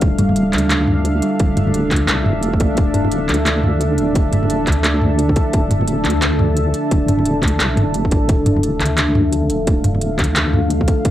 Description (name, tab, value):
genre	half-time drum and bass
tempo	174 BPM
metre	4/4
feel	swing 59% on 16ths, half-time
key	D minor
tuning	A4 = 440 Hz
part	deep dark ambient pad	sustained chords	0.0-11.1 s	D4 to A5	-20 LUFS	equal	chorus, built-in reverb, sidechain pumping, cassette tape
part	kalimba	arpeggios	0.0-11.1 s	D3 to A3	-24 LUFS	equal	cassette tape, tape echo
part	deep soft wobble bass	bass	0.0-11.1 s	D1 to D2	-20 LUFS	equal	chorus
part	electronic kick drum	drums	0.0-11.1 s	none	-16 LUFS	equal	overdrive, small room ambience, cassette tape
part	organic electronic drum kit	drums	0.0-11.1 s	handclaps, hi-hat, toms	-19 LUFS	equal	small room ambience, cassette tape
room	moderate small room reverb, RT60 0.6 s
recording	home recording on cassette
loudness	-14 LUFS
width	side -13 dB against mid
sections	0.0-11.1 A section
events	none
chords	0.0 Dm